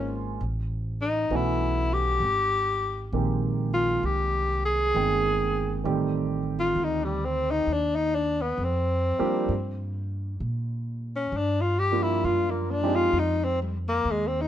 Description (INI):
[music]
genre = jazz ballad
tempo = 66 BPM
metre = 4/4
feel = swing 66% on 8ths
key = Eb major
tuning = A4 = 440 Hz
[part]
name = breathy tenor saxophone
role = melody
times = 0.0-14.5 s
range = G3 to Ab4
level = -25 LUFS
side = left 2 dB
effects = none
[part]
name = warm baby grand piano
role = accompaniment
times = 0.0-13.2 s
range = Eb3 to G5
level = -29 LUFS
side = right 4 dB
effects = none
[part]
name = upright bass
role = bass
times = 0.0-14.5 s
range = G1 to Bb2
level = -29 LUFS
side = equal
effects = none
[sound]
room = light reverb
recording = none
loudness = -24 LUFS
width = side -11 dB against mid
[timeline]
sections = 0.0-14.5 A section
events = tenor saxophone solo 0.0-14.5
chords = 0.4 Aadd9; 2.2 Abmaj9; 5.8 Am7b5; 7.7 Ebmaj13; 9.5 Gm7; 13.1 Ebsus2